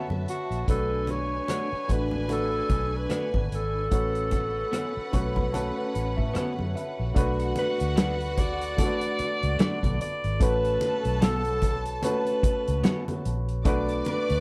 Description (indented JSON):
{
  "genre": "lush 1970s-style soul",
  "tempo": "74 BPM",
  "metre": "4/4",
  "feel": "swing 58% on 16ths",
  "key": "unclear",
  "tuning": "A4 = 440 Hz",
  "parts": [
    { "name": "warm studio string section", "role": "second line", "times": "0.0-14.4 s", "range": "C#4 to D6", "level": "-38 LUFS", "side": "equal", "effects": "none" },
    { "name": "warm baby grand piano", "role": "accompaniment", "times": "0.0-14.4 s", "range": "A3 to C#6", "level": "-34 LUFS", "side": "equal", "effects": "none" },
    { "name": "electric guitar through a small old amp", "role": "riff", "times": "0.0-13.0 s", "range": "A3 to F#4", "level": "-36 LUFS", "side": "equal", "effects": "subtle chorus" },
    { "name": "vintage muted fingered electric bass", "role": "bass", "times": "0.1-14.4 s", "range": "G#1 to A2", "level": "-32 LUFS", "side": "equal", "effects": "none" },
    { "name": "congas", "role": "percussion", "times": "0.1-14.3 s", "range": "none", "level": "-40 LUFS", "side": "equal", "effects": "none" },
    { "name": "warm alto saxophone", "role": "melody", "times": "0.3-14.4 s", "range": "F#4 to D5", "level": "-32 LUFS", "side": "equal", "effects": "slapback echo" },
    { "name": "vintage drum kit", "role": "drums", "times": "0.3-14.4 s", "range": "hi-hat, kick drum, rim click, snare drum", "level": "-29 LUFS", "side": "equal", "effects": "none" }
  ],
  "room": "little or no reverb",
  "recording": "none",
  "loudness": "-27 LUFS",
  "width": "mono",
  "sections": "0.0-7.2 A section; 7.2-14.4 B section",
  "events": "grand piano fill 4.7-7.2",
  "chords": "0.0 A69; 0.7 Bm7; 3.9 A69; 7.2 Bm7; 10.4 A69; 13.7 Bm7",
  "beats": "| 0.68 1.49 2.30 3.11 | 3.92 4.73 5.54 6.35 | 7.16 7.97 8.78 9.60 | 10.41 11.22 12.03 12.84 | 13.66"
}